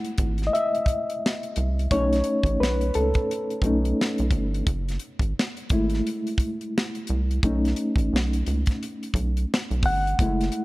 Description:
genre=R&B, neo-soul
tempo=87 BPM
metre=4/4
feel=swing 58% on 16ths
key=unclear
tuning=A4 = 441 Hz
part: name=reed electric piano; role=accompaniment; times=0.0-10.6 s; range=G#3 to F#5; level=-25 LUFS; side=left 1 dB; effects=harmonic tremolo
part: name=tight funk drum kit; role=drums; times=0.0-10.6 s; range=hi-hat, kick drum, snare drum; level=-26 LUFS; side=equal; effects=none
part: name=rubbery square bass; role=bass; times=0.2-10.5 s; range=F#1 to C#2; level=-25 LUFS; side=equal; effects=none
room=light reverb, small room reverb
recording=none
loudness=-22 LUFS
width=side -20 dB against mid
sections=0.0-10.6 A section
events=reed electric piano solo 0.0-10.6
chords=0.0 F#m9; 1.9 B9; 4.7 F#m9; 7.4 B9

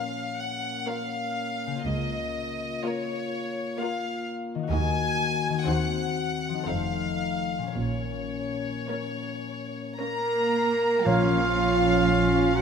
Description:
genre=classical, slow romantic movement for symphony orchestra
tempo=52-65 BPM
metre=3/4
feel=rubato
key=Bb minor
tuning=A4 = 442 Hz
part: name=warm chamber violin section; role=melody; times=0.0-12.6 s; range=Db5 to Bb5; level=-31 LUFS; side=left 3 dB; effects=none
part: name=rich chamber violin section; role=second line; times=0.0-12.6 s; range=F4 to Bb5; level=-34 LUFS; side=left 1 dB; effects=none
part: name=rich studio viola section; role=accompaniment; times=0.0-12.6 s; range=Bb3 to F4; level=-34 LUFS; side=right 4 dB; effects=none
part: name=mellow French horn section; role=sustained chords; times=0.0-12.6 s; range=A3 to Bb4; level=-30 LUFS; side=equal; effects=none
part: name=concert harp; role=arpeggios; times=0.0-12.6 s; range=Bb2 to Bb5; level=-34 LUFS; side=left 10 dB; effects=none
part: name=rich studio cello section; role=bass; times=1.8-12.6 s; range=Db2 to Bb3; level=-32 LUFS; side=right 4 dB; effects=none
part: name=dark chamber double bass section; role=bass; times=1.9-12.6 s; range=F1 to Eb2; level=-32 LUFS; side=right 4 dB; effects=none
part: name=clear oboe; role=second line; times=10.0-12.6 s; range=F5 to Bb5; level=-31 LUFS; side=right 2 dB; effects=none
part: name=warm trumpet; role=stabs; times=10.0-12.6 s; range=F4 to Bb4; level=-31 LUFS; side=right 3 dB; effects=none
part: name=mellow hollow silver concert flute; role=second line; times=11.1-11.5 s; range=Db5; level=-34 LUFS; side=equal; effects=none
part: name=clear bassoon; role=accompaniment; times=11.1-11.4 s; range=Bb3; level=-32 LUFS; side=right 3 dB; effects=none
part: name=bright trombone section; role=sustained chords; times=11.1-12.6 s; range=F3 to Db4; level=-33 LUFS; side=right 5 dB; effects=none
part: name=timpani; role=percussion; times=11.1-12.5 s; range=Bb2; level=-32 LUFS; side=left 1 dB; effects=none
part: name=bright clarinet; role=second line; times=12.0-12.6 s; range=Db4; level=-30 LUFS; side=left 2 dB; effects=none
room=moderate concert hall reverb, RT60 1.9 s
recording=none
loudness=-24 LUFS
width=side -6 dB against mid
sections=0.0-11.1 A section; 11.1-12.6 A section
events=none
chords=0.0 Bbm; 1.9 Bbm/Db; 4.7 Ebm; 5.7 Cdim/Eb; 6.7 F7; 7.8 Bbm

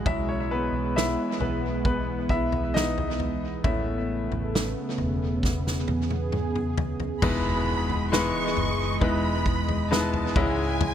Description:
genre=pop ballad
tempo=67 BPM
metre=4/4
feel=straight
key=E major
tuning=A4 = 440 Hz
part: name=clear concert grand piano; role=accompaniment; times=0.0-10.9 s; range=G#2 to E5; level=-28 LUFS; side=left 3 dB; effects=tape echo
part: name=lush unison pad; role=sustained chords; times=0.0-10.9 s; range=C#3 to D#5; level=-31 LUFS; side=right 2 dB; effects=chorus
part: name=vintage muted fingered electric bass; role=bass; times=0.0-10.9 s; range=E1 to E2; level=-30 LUFS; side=equal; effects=none
part: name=natural country drum kit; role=drums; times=0.1-10.9 s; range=crash cymbal, kick drum, snare drum, toms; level=-29 LUFS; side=equal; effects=tape echo
part: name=warm studio violin section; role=second line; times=7.2-10.9 s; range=G#5 to C#6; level=-31 LUFS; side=right 3 dB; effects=none
part: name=impact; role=sound effects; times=7.3-10.8 s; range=none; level=-38 LUFS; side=right 1 dB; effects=none
room=small room ambience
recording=echo-heavy mix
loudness=-23 LUFS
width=side -10 dB against mid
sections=0.0-7.2 A section; 7.2-10.9 B section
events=grand piano solo 0.0-7.2; drum fill 5.4-7.2; impact 7.2-10.8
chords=0.1 Emaj7/B; 3.6 Aadd9; 7.2 Emaj7; 10.4 C#m

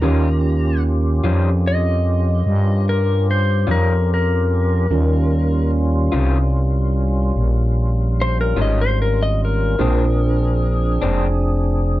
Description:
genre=slow blues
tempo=49 BPM (dotted quarters)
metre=12/8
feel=straight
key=unclear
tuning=A4 = 440 Hz
part: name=clean lap steel guitar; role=melody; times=0.0-11.0 s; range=Bb4 to Bb5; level=-23 LUFS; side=left 3 dB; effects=none
part: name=electric guitar through a small old amp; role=accompaniment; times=0.0-11.3 s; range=Bb2 to F4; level=-24 LUFS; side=left 5 dB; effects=harmonic tremolo
part: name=tine electric piano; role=accompaniment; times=0.0-12.0 s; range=Db4 to C5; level=-27 LUFS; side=right 5 dB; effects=medium tremolo
part: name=tonewheel organ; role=sustained chords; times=0.0-12.0 s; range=G3 to Ab4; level=-26 LUFS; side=equal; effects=slow rotary speaker, overdrive, chorus vibrato
part: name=growling FM bass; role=bass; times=0.0-12.0 s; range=F1 to G2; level=-17 LUFS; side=equal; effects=none
room=little or no reverb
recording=dark, warm production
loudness=-16 LUFS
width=side -16 dB against mid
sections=0.0-12.0 A section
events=electric slide guitar solo 0.0-12.0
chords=0.0 Eb9; 9.8 Bb9

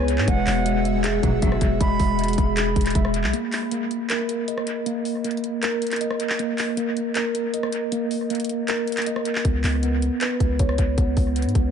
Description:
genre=hip hop, trap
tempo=157 BPM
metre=4/4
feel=half-time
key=Eb phrygian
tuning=A4 = 440 Hz
part: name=airy breathy pad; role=sustained chords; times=0.0-3.3 s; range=Cb4 to E5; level=-32 LUFS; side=equal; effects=chorus
part: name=mellow tine electric piano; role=arpeggios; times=0.0-11.7 s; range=G#3 to E5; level=-24 LUFS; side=equal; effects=medium stereo tremolo, low-pass filter, dub echo
part: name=long sustained 808-style bass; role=bass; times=0.0-3.3, 9.4-11.7 s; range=E1 to Ab2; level=-24 LUFS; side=equal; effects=none
part: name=trap drum kit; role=drums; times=0.1-11.6 s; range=handclaps, hi-hat, kick drum, rim click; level=-25 LUFS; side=equal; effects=dub echo
part: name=silver concert flute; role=second line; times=0.3-2.5 s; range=F#5 to B5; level=-30 LUFS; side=right 4 dB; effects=dub echo
part: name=muted studio string section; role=stabs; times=1.2-1.7 s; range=B1 to F#3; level=-28 LUFS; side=right 3 dB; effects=none
room=light reverb, digital ambience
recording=echo-heavy mix, nothing above 10.9 kHz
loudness=-20 LUFS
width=side -7 dB against mid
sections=0.0-3.3 A section; 3.3-11.7 B section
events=break 3.3-9.4; filter sweep on tine electric piano 3.3-11.7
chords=0.3 Eadd9; 3.3 Eb5; 9.4 Db5

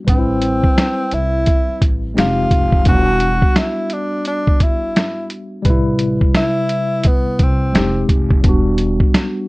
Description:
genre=hip hop, jazz-hop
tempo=86 BPM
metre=4/4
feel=swing 60% on 16ths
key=A dorian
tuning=A4 = 443 Hz
part: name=tine electric piano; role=accompaniment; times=0.0-9.5 s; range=C3 to B4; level=-20 LUFS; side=left 1 dB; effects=fast stereo tremolo
part: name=breathy tenor saxophone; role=melody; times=0.1-8.1 s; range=B3 to F#4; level=-19 LUFS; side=equal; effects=plate reverb
part: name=upright bass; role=bass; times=0.1-9.1 s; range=E1 to C2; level=-21 LUFS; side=equal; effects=none
part: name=lo-fi sampler-style drum kit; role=drums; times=0.1-9.3 s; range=hi-hat, kick drum, snare drum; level=-14 LUFS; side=equal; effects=vintage 12-bit sampler grit
room=little or no reverb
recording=dark, warm production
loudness=-13 LUFS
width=side -22 dB against mid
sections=0.0-8.4 A section; 8.4-9.5 B section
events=none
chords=0.1 Am9; 2.2 Fm7; 2.9 Em7; 5.7 Am9; 7.7 Fm7; 8.4 Em7

